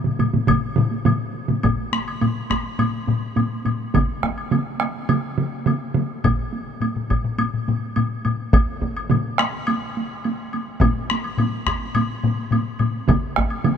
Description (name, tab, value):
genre	japanese traditional, taiko drum ensemble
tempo	105 BPM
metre	4/4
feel	straight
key	none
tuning	none
part	solo taiko drums	percussion	0.0-9.5, 13.1-13.8 s	none	-23 LUFS	right 3 dB	none
part	solo taiko drums	percussion	0.1-12.9 s	none	-24 LUFS	left 5 dB	none
part	solo taiko drums	percussion	0.2-13.8 s	none	-26 LUFS	right 4 dB	none
part	woodblock	percussion	0.2-13.8 s	none	-30 LUFS	left 4 dB	none
part	taiko ensemble	percussion	0.5-13.5 s	none	-21 LUFS	equal	none
room	moderate huge ambient reverb, RT60 6.5 s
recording	minimal, uncompressed stereo recording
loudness	-19 LUFS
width	side -8 dB against mid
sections	0.0-1.6 A section; 1.6-13.8 B section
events	none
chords	none